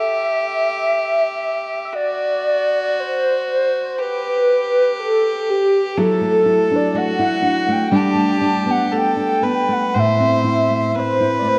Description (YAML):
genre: celtic folk, Celtic slow air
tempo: 59 BPM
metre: 4/4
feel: rubato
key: unclear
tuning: A4 = 440 Hz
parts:
  - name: pure sine lead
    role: melody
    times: 0.0-11.6 s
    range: G4 to A5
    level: -20 LUFS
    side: equal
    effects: chorus, tremolo
  - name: rich fiddle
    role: second line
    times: 0.0-11.6 s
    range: F#4 to C5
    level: -25 LUFS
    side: equal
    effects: none
  - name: nylon-string guitar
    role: accompaniment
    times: 6.0-11.6 s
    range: A2 to E4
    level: -21 LUFS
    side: equal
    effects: none
room: wet church reverb, RT60 3.4 s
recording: none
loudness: -18 LUFS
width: mono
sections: 0.0-11.6 A section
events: none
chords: 0.0 N.C.; 6.0 Dadd9/F#; 7.9 Gadd9; 10.0 Am